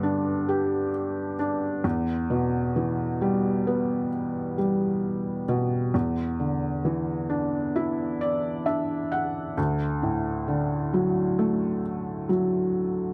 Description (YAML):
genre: pop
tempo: 66 BPM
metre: 4/4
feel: straight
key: D major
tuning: A4 = 439 Hz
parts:
  - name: felt-muted upright piano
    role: solo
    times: 0.0-13.1 s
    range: D2 to F#5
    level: -26 LUFS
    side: equal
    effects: none
room: light reverb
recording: none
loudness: -26 LUFS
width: mono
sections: 0.0-13.1 A section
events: felt piano fill 7.8-9.6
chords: 0.0 G; 1.8 Em; 5.9 Dadd9/E; 9.6 D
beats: 0.48 1.39 | 2.30 3.21 4.12 5.03 | 5.94 6.85 7.75 8.66 | 9.57 10.48 11.39 12.30